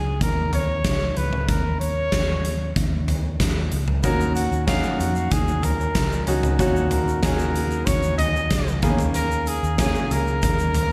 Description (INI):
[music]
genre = piano-driven pop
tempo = 94 BPM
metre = 4/4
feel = straight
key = Eb minor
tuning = A4 = 439 Hz
[part]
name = warm trumpet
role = melody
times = 0.0-10.9 s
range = Gb4 to Eb5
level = -29 LUFS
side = equal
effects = slapback echo
[part]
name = vintage muted fingered electric bass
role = bass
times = 0.0-10.9 s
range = C#2 to F2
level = -27 LUFS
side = equal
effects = none
[part]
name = huge arena drum kit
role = drums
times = 0.2-10.9 s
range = hi-hat, kick drum, snare drum, toms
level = -26 LUFS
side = equal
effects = none
[part]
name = bright concert grand piano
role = accompaniment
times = 4.0-10.9 s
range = Bb2 to F5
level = -28 LUFS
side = equal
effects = slapback echo
[part]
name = egg shaker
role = percussion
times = 4.0-10.9 s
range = none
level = -43 LUFS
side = equal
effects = none
[sound]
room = moderate lush hall reverb, RT60 1.8 s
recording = big arena sound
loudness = -22 LUFS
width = mono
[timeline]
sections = 0.0-10.9 A section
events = none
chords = 0.0 Badd9/C# (rootless); 4.0 Ebm7; 8.8 Bbm7